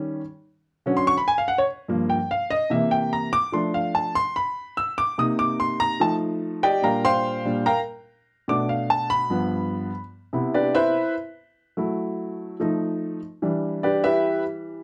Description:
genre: jazz.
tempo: 146 BPM.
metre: 4/4.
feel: straight.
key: C major from 10.1 s.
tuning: A4 = 441 Hz.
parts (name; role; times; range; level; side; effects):
warm grand piano; solo; 0.0-14.8 s; G2 to E6; -24 LUFS; equal; none.
room: moderate club reverb, RT60 0.5 s.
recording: none.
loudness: -24 LUFS.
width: mono.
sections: 0.0-10.1 A section; 10.1-14.8 A section.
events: grand piano solo 0.0-10.1, 10.1-14.8.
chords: 0.2 Dmaj7; 1.9 Gm7; 2.7 C7; 3.5 F6; 5.2 Cm7; 6.0 F13; 6.8 Bb69; 8.5 Bm7b5; 9.3 G7; 10.1 Cmaj9; 11.8 F#m7; 12.6 F7; 13.4 Em7.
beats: | 0.24 0.66 1.07 1.48 | 1.89 2.30 2.72 3.13 | 3.54 3.95 4.36 4.78 | 5.19 5.60 6.01 6.42 | 6.83 7.25 7.66 8.07 | 8.48 8.89 9.30 9.72 | 10.13 10.54 10.95 11.36 | 11.78 12.19 12.60 13.01 | 13.42 13.83 14.24 14.66.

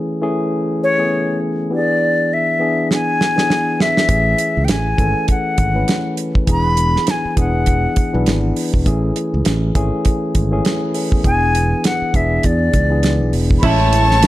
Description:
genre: lush 1970s-style soul.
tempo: 101 BPM.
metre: 4/4.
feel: swing 58% on 16ths.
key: A major.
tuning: A4 = 440 Hz.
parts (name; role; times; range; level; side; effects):
barky tine electric piano; accompaniment; 0.0-14.3 s; E3 to C#5; -20 LUFS; left 1 dB; overdrive.
breathy silver concert flute; melody; 0.8-14.3 s; C#5 to B5; -18 LUFS; left 1 dB; none.
damped 70s drum kit; drums; 2.9-14.3 s; crash cymbal, hi-hat, kick drum, snare drum; -18 LUFS; right 1 dB; none.
modern bright fingered electric bass; bass; 4.1-14.3 s; E1 to E2; -18 LUFS; equal; none.
dark symphonic string section; second line; 13.6-14.3 s; C#5 to C#6; -23 LUFS; left 2 dB; none.
dark French horn section; sustained chords; 13.6-14.3 s; C#3 to E4; -27 LUFS; left 2 dB; none.
warm horn section; stabs; 13.6-14.1 s; A3 to E4; -21 LUFS; right 4 dB; none.
room: small room ambience.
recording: dark, warm production.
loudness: -14 LUFS.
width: side -15 dB against mid.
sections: 0.0-13.6 A section.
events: drum fill 2.9-4.1.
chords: 0.0 Amaj7; 1.7 E7; 4.1 Amaj7; 6.5 E7; 8.9 Amaj7; 11.2 E7; 13.6 Amaj7.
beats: 0.52 1.11 | 1.71 2.31 2.90 3.50 | 4.09 4.69 5.28 5.88 | 6.48 7.07 7.67 8.26 | 8.86 9.46 10.05 10.65 | 11.24 11.84 12.44 13.03 | 13.63 14.22.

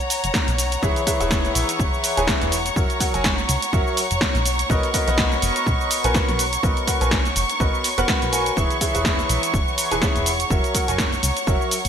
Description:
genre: piano house.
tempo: 124 BPM.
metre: 4/4.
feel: swing 56% on 16ths.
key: unclear.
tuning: A4 = 440 Hz.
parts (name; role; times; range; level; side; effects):
rich studio violin section; sustained chords; 0.0-11.9 s; A#5 to C#6; -26 LUFS; right 2 dB; sidechain pumping.
punchy analog drum machine; drums; 0.0-11.9 s; hi-hat, shaker, snare drum; -24 LUFS; equal; gated reverb.
dark chamber string section; texture; 0.0-11.9 s; C#5 to A#5; -29 LUFS; left 2 dB; sidechain pumping.
plucky analog bass; bass; 0.2-11.9 s; E1 to C#2; -25 LUFS; equal; sidechain pumping.
electronic kick drum; drums; 0.3-11.6 s; none; -23 LUFS; equal; none.
clear upright piano; riff; 0.8-11.7 s; E3 to G#5; -25 LUFS; equal; analog chorus, sidechain pumping.
room: moderate lush hall reverb, RT60 2.2 s.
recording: bright 1980s-style digital production.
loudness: -18 LUFS.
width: side -8 dB against mid.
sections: 0.0-11.9 A section.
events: none.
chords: 0.0 F#; 0.8 E6; 2.8 F#7; 4.5 Bmaj7; 8.6 E6; 10.5 F#7.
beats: 0.34 | 0.83 1.31 1.79 2.28 | 2.76 3.25 3.73 4.21 | 4.70 5.18 5.67 6.15 | 6.63 7.12 7.60 8.09 | 8.57 9.05 9.54 10.02 | 10.51 10.99 11.47.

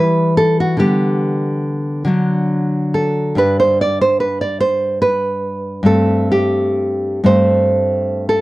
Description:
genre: romantic piece for solo classical guitar.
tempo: 41-51 BPM (dotted quarters).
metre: 6/8.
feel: rubato.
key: G major.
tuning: A4 = 439 Hz.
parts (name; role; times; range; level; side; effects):
nylon-string guitar; solo; 0.0-8.4 s; G2 to D5; -13 LUFS; equal; slapback echo.
room: light reverb.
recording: dry, close 1970s-style studio recording.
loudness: -14 LUFS.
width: side -18 dB against mid.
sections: 0.0-8.4 A section.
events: none.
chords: 0.0 Emadd9; 0.8 G/D; 2.1 D; 3.4 G; 5.9 Am7/G.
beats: | 0.82 2.09 | 3.39 4.64 | 5.88 7.26.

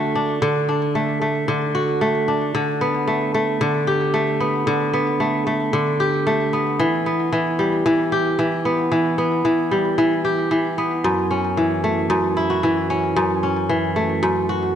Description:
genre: folktronica.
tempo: 113 BPM.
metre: 4/4.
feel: straight.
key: unclear.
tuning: A4 = 441 Hz.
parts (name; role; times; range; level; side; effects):
kora; solo; 0.0-14.8 s; F#2 to G4; -18 LUFS; equal; digital delay.
room: moderate concert hall reverb, RT60 2.0 s.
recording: dark, warm production.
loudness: -18 LUFS.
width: side -9 dB against mid.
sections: 0.0-14.8 A section.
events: none.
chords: 0.0 D; 2.5 Gadd9/D; 6.8 Em; 11.0 F#m7.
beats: | 0.42 0.95 1.48 2.01 | 2.54 3.08 3.61 4.14 | 4.67 5.20 5.73 6.26 | 6.79 7.32 7.85 8.38 | 8.92 9.45 9.98 10.51 | 11.04 11.57 12.10 12.63 | 13.16 13.69 14.22.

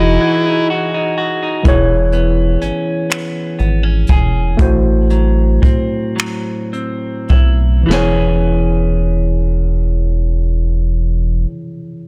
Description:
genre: slow six-eight R&B.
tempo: 34-42 BPM (dotted quarters).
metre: 6/8.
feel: straight.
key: E major.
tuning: A4 = 443 Hz.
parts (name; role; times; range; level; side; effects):
fuzz lead guitar; melody; 0.0-0.7 s; E4; -19 LUFS; equal; distortion.
clean electric guitar; second line; 0.0-11.5 s; A2 to G#4; -25 LUFS; equal; none.
tine electric piano; accompaniment; 0.0-12.1 s; E3 to D#5; -22 LUFS; equal; overdrive.
warm analog pad; sustained chords; 0.0-1.6 s; E3 to D#5; -27 LUFS; equal; none.
rubbery square bass; bass; 0.0-11.5 s; E1 to B1; -16 LUFS; equal; none.
jazz brush drum kit; drums; 1.6-8.2 s; finger snaps, hi-hat, kick drum, snare drum; -17 LUFS; equal; none.
room: small room ambience.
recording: dry, gritty hardware recording.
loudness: -15 LUFS.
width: mono.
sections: 0.0-1.6 A section; 1.6-7.9 B section; 7.9-11.4 C section.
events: break 0.2-1.6; slowing down 1.6-7.9.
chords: 0.0 Emaj9; 1.6 E6; 4.6 Am6; 7.9 E6.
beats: 0.22 | 1.65 3.09 | 4.59 6.17 | 7.88 9.66.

